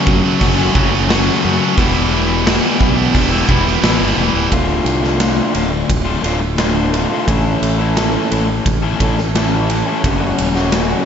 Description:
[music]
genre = quiet-loud alternative rock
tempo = 87 BPM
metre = 4/4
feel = straight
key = unclear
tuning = A4 = 441 Hz
[part]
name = fuzz guitar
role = riff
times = 0.0-11.1 s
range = D2 to A4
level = -19 LUFS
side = left 8 dB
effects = distortion
[part]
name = high-gain distorted guitar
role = riff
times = 0.0-4.5 s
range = E2 to F#3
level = -21 LUFS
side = right 2 dB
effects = distortion
[part]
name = tight distorted guitar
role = riff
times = 0.0-4.5 s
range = E2 to F#4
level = -20 LUFS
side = right 9 dB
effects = distortion
[part]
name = fuzz fingered electric bass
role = bass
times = 0.1-10.9 s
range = D1 to F#2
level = -20 LUFS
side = right 1 dB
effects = overdrive
[part]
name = big rock drum kit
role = drums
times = 0.1-10.9 s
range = hi-hat, kick drum, ride cymbal, snare drum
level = -18 LUFS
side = equal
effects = none
[part]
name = electric guitar through a small old amp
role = arpeggios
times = 4.5-11.1 s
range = D2 to A4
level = -20 LUFS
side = right 2 dB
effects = none
[sound]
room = wet lush hall reverb, RT60 2.7 s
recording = big arena sound, nothing above 7.8 kHz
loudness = -13 LUFS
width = side -8 dB against mid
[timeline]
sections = 0.0-4.5 A section; 4.5-11.1 B section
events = none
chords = 0.0 F#m; 1.8 Em; 4.5 Dm; 7.3 A; 10.0 F#m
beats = 0.41 1.09 | 1.78 2.46 3.15 3.84 | 4.52 5.21 5.90 6.59 | 7.28 7.97 8.66 9.35 | 10.04 10.73

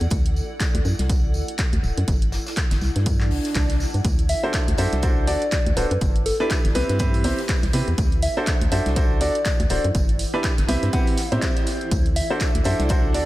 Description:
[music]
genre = piano house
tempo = 122 BPM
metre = 4/4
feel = swing 58% on 16ths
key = D mixolydian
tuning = A4 = 441 Hz
[part]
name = organ-like FM bass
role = bass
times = 0.0-13.2 s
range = D1 to C3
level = -23 LUFS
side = equal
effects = sidechain pumping
[part]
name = punchy analog drum machine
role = drums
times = 0.0-13.3 s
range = handclaps, hi-hat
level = -31 LUFS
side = right 1 dB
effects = none
[part]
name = granular cloud pad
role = texture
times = 0.0-13.3 s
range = E4 to F#5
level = -35 LUFS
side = left 1 dB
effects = built-in reverb, analog chorus, sidechain pumping
[part]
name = electronic kick drum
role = drums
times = 0.1-13.0 s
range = none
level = -22 LUFS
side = equal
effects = none
[part]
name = loose indie drum kit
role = drums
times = 0.1-13.3 s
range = hi-hat, snare drum, tambourine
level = -38 LUFS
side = equal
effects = high-pass filter on hats, high-pass filter on snare, high-pass filter on perc, high-pass filter on room
[part]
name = swell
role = sound effects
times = 3.2-4.0 s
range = none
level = -30 LUFS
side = right 2 dB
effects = none
[part]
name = soft struck synth lead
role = melody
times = 4.3-13.3 s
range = A4 to F#5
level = -28 LUFS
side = left 1 dB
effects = chorus, tape echo
[part]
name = clear baby grand piano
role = riff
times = 4.4-13.3 s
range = C4 to D5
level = -26 LUFS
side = right 1 dB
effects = sidechain pumping, tape echo
[sound]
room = light reverb, studio reverb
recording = none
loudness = -19 LUFS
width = side -16 dB against mid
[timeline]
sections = 0.0-13.3 A section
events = fade-in on ambient pad 0.0-13.3; swell 3.2-4.0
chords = 0.1 D7; 2.1 G5; 2.8 C; 4.0 D7; 6.0 G6; 6.8 Cmaj7; 8.0 D7; 9.9 G6; 10.7 Cmaj7; 11.9 D7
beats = | 0.11 0.60 1.10 1.59 | 2.08 2.57 3.06 3.56 | 4.05 4.54 5.03 5.52 | 6.01 6.51 7.00 7.49 | 7.98 8.47 8.96 9.46 | 9.95 10.44 10.93 11.42 | 11.91 12.41 12.90

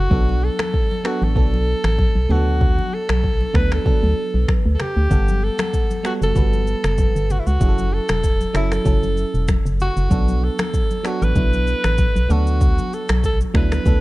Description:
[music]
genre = afrobeats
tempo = 96 BPM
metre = 4/4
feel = swing 55% on 16ths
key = B minor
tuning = A4 = 440 Hz
[part]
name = bright alto saxophone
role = melody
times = 0.0-14.0 s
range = E4 to B4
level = -24 LUFS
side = equal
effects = none
[part]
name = FM electric piano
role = accompaniment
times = 0.0-14.0 s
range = E#3 to F#5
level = -26 LUFS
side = right 4 dB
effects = chorus
[part]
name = organ-like FM bass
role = bass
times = 0.0-14.0 s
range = E1 to D2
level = -19 LUFS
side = equal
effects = none
[part]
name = afro-pop drum kit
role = drums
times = 0.1-14.0 s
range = finger snaps, kick drum, rim click, shaker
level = -20 LUFS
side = equal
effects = none
[part]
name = congas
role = percussion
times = 0.1-14.0 s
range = none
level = -30 LUFS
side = left 4 dB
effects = none
[sound]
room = digital ambience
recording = dark, warm production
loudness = -16 LUFS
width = side -19 dB against mid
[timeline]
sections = 0.0-14.0 A section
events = break 0.0-5.1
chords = 0.1 Bm7; 2.3 D6; 5.1 Gmaj9; 7.6 F#m7; 10.1 Bm7; 12.3 D6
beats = | 0.11 0.73 1.36 1.99 | 2.61 3.23 3.86 4.49 | 5.11 5.74 6.36 6.99 | 7.61 8.23 8.86 9.48 | 10.11 10.73 11.36 11.98 | 12.61 13.23 13.86

